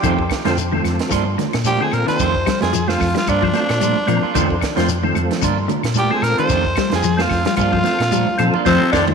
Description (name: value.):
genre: afrobeat.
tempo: 111 BPM.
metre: 4/4.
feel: swing 56% on 16ths.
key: unclear.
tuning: A4 = 440 Hz.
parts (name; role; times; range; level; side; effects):
growling tenor saxophone; melody; 0.0-8.6 s; D4 to C5; -22 LUFS; equal; tape echo.
percussive tonewheel organ; accompaniment; 0.0-9.0 s; C4 to C5; -24 LUFS; left 1 dB; slow rotary speaker, chorus vibrato.
clean electric guitar; arpeggios; 0.0-9.1 s; D3 to G3; -23 LUFS; left 11 dB; none.
electric guitar at the edge of break-up; stabs; 0.0-9.1 s; Eb3 to F4; -23 LUFS; right 8 dB; spring reverb.
hollow-body short-scale fingered electric bass; bass; 0.0-9.1 s; F2 to Bb2; -22 LUFS; left 1 dB; transformer saturation.
compact cocktail drum kit; drums; 0.0-9.1 s; crash cymbal, hi-hat, kick drum, ride cymbal, snare drum; -26 LUFS; right 3 dB; none.
congas; percussion; 0.0-9.1 s; none; -25 LUFS; right 11 dB; none.
shekere; percussion; 0.0-9.1 s; none; -29 LUFS; left 10 dB; none.
claves; percussion; 0.3-9.1 s; none; -33 LUFS; left 13 dB; none.
raspy baritone saxophone; second line; 8.6-9.1 s; C3 to D3; -22 LUFS; left 12 dB; none.
growling tenor saxophone; melody; 8.7-9.0 s; C4 to D4; -17 LUFS; left 1 dB; none.
breathy alto saxophone; second line; 8.7-9.1 s; C4 to D4; -26 LUFS; right 5 dB; none.
room: moderate echo chamber reverb, RT60 2.3 s.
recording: 1960s-style stereo with parts hard left and right, tape saturation.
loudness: -15 LUFS.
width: side -6 dB against mid.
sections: 0.0-8.7 A section.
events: tenor saxophone solo 0.0-8.7; drum fill 8.3-8.7.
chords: 0.0 F7; 1.1 Gm7; 2.2 F7; 3.3 Gm7; 4.3 F7; 5.4 Gm7; 6.5 F7; 7.6 Gm7.